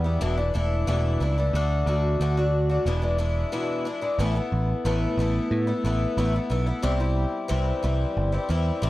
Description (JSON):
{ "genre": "folk rock and heartland rock", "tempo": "90 BPM", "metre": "4/4", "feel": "straight", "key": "unclear", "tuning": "A4 = 437 Hz", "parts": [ { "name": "picked twelve-string acoustic guitar", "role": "accompaniment", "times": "0.0-8.9 s", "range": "E2 to F#4", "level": "-26 LUFS", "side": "left 2 dB", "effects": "none" }, { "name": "picked electric bass", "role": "bass", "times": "0.0-8.9 s", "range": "E1 to A2", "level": "-24 LUFS", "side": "right 1 dB", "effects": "none" } ], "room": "small room ambience", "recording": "dry, close 1970s-style studio recording", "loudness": "-22 LUFS", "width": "side -16 dB against mid", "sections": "0.0-4.2 A section; 4.2-8.9 B section", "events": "break 3.5-4.2", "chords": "0.2 E7sus4; 1.5 D; 2.9 E7; 4.2 Asus2; 6.8 C" }